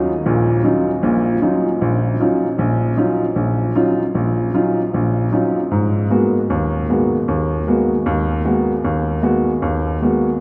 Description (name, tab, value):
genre	jazz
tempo	153 BPM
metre	4/4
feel	swing 64% on 8ths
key	Eb minor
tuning	A4 = 440 Hz
part	warm baby grand piano	solo	0.0-10.3 s	Bb1 to Gb4	-18 LUFS	equal	none
room	wet cathedral reverb, RT60 6.4 s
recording	in a vast, echoing space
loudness	-18 LUFS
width	mono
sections	0.0-10.4 A section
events	none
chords	0.0 Ebm9; 5.7 Abm9